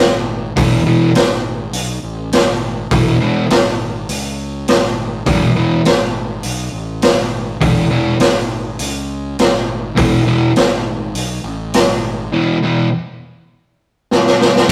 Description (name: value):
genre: garage rock duo or trio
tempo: 102 BPM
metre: 4/4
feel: straight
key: E major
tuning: A4 = 440 Hz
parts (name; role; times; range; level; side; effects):
- fuzz fingered electric bass; bass; 0.0-14.7 s; E1 to C#2; -26 LUFS; equal; overdrive
- fuzz guitar; riff; 0.6-14.7 s; E2 to E3; -17 LUFS; equal; distortion
- raw garage drum kit; drums; 0.6-14.7 s; crash cymbal, hi-hat, kick drum, snare drum; -17 LUFS; equal; none
room: moderate stone room reverb, RT60 1.2 s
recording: rough rehearsal-room recording, warm saturation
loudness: -16 LUFS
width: mono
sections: 0.0-14.7 A section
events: drum fill 14.1-14.7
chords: 0.0 E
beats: | 0.57 1.15 1.74 2.33 | 2.91 3.50 4.09 4.67 | 5.26 5.85 6.44 7.03 | 7.62 8.21 8.79 9.38 | 9.97 10.56 11.15 11.74 | 12.33 12.92 13.51 14.10 | 14.69